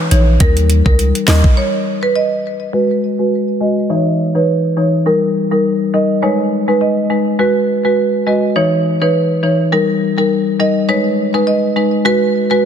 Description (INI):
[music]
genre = dancehall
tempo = 103 BPM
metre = 4/4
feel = swing 56% on 16ths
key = G# minor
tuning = A4 = 439 Hz
[part]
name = marimba with medium mallets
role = accompaniment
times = 0.1-12.6 s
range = E3 to C#5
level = -15 LUFS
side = left 2 dB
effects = sidechain pumping, low-pass filter
[part]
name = punchy sub bass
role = bass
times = 0.1-1.4 s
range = A#1 to D#2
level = -12 LUFS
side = equal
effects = none
[part]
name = afro-pop drum kit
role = drums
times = 0.1-1.6 s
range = handclaps, hi-hat, kick drum, snare drum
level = -14 LUFS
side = equal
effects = none
[part]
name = marimba with medium mallets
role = melody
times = 0.4-12.6 s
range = A#4 to D#5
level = -17 LUFS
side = right 4 dB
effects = low-pass filter, ping-pong delay
[sound]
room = light reverb, digital ambience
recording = dense, heavily limited modern master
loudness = -12 LUFS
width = side -8 dB against mid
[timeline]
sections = 0.0-2.7 A section; 2.7-12.1 B section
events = break 1.6-2.7; filter sweep 2.7-12.1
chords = 0.4 D#; 1.6 N.C.; 2.7 G#m7; 3.9 C#madd9; 5.1 D#; 6.2 B6; 7.4 G#m7; 8.6 C#madd9; 9.7 D#; 10.9 B6; 12.1 G#m7